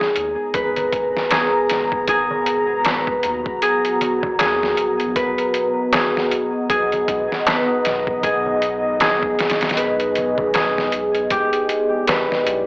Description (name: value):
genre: trip hop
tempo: 78 BPM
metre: 4/4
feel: swing 58% on 16ths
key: unclear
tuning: A4 = 440 Hz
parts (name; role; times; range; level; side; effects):
- deep dark ambient pad; sustained chords; 0.0-12.7 s; B3 to A#5; -22 LUFS; equal; chorus, built-in reverb
- concert harp; arpeggios; 0.0-12.7 s; D#4 to B4; -20 LUFS; equal; analog delay
- trip hop sampler-style drum kit; drums; 0.0-12.7 s; hi-hat, kick drum, snare drum; -23 LUFS; equal; overdrive, studio reverb
- soft dub sub bass; bass; 0.2-12.7 s; D#1 to D#2; -38 LUFS; equal; none
- darbuka; percussion; 0.8-12.3 s; none; -24 LUFS; equal; none
room: light reverb, digital ambience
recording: dry, gritty hardware recording, cassette tape, AM radio sound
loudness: -16 LUFS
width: side -25 dB against mid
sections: 0.0-12.7 A section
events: none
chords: 0.0 G#madd9; 5.2 Bmaj7; 11.3 Em7